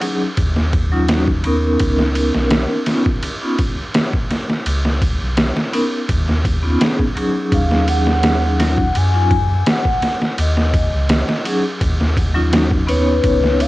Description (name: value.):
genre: trip hop.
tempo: 84 BPM.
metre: 4/4.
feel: straight.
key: Eb minor.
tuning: A4 = 440 Hz.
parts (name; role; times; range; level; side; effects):
vibraphone with medium hard mallets; accompaniment; 0.0-13.7 s; Gb3 to Db5; -19 LUFS; equal; tremolo, vintage 12-bit sampler grit, low-pass filter, cassette tape.
trip hop sampler-style drum kit; drums; 0.0-13.7 s; kick drum, ride cymbal, snare drum; -18 LUFS; equal; overdrive, small room ambience.
soft dub sub bass; bass; 0.4-13.7 s; Cb2 to Gb2; -18 LUFS; equal; none.
pure breathy sine lead; melody; 7.5-13.7 s; Cb5 to Ab5; -22 LUFS; left 2 dB; phaser, lush chorus, cassette tape, dub echo.
room: light reverb.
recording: home recording on cassette.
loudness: -14 LUFS.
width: side -18 dB against mid.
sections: 0.0-13.7 A section.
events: filter sweep on vibraphone 0.0-13.7.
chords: 0.0 Ebm7; 1.8 Db7sus2; 7.5 Ebm7.